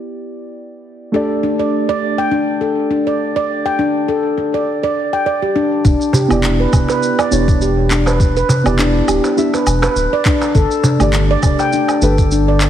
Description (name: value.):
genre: organic downtempo.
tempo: 102 BPM.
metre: 4/4.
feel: swing 55% on 16ths.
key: E minor.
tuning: A4 = 440 Hz.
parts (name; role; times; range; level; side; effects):
muted felt-like synth keys; accompaniment; 0.0-12.2 s; A3 to E5; -20 LUFS; right 2 dB; chorus, sidechain pumping, tape echo.
handpan; arpeggios; 1.1-12.6 s; D4 to G5; -16 LUFS; left 1 dB; tape echo.
warm sub bass; bass; 5.8-12.7 s; D1 to G1; -16 LUFS; equal; sidechain pumping.
electronic kick drum; drums; 5.8-12.3 s; none; -14 LUFS; equal; none.
electronic shaker, woodblock and handclaps; drums; 5.8-12.7 s; none; -22 LUFS; right 1 dB; low-pass filter on perc, low-pass filter on snare.
darbuka; percussion; 6.1-12.0 s; none; -19 LUFS; right 1 dB; none.
room: moderate scoring stage reverb, RT60 1.4 s.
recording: heavily compressed radio sound, multiband compression.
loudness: -13 LUFS.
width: side -10 dB against mid.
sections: 0.0-5.8 A section; 5.8-12.7 B section.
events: none.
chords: 0.0 Em7; 1.1 Gsus2; 5.8 Em7; 10.6 Gsus2.